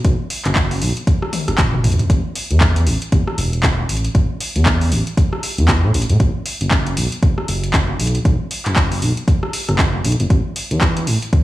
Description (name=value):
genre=deep house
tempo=117 BPM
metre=4/4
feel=swing 59% on 16ths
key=unclear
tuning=A4 = 439 Hz
part: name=smooth gliding synth bass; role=bass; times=0.0-11.4 s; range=E1 to A2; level=-17 LUFS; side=equal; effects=sidechain pumping
part: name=deep house drum kit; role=drums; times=0.0-11.4 s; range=handclaps, hi-hat, rim click, toms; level=-21 LUFS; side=equal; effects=overdrive
part: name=electronic kick drum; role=drums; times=0.0-11.4 s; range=none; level=-17 LUFS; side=equal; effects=overdrive
room=little or no reverb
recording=dry, gritty hardware recording, transformer saturation, studio reverb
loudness=-15 LUFS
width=side -16 dB against mid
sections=0.0-11.4 A section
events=drum fill 1.3-2.1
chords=none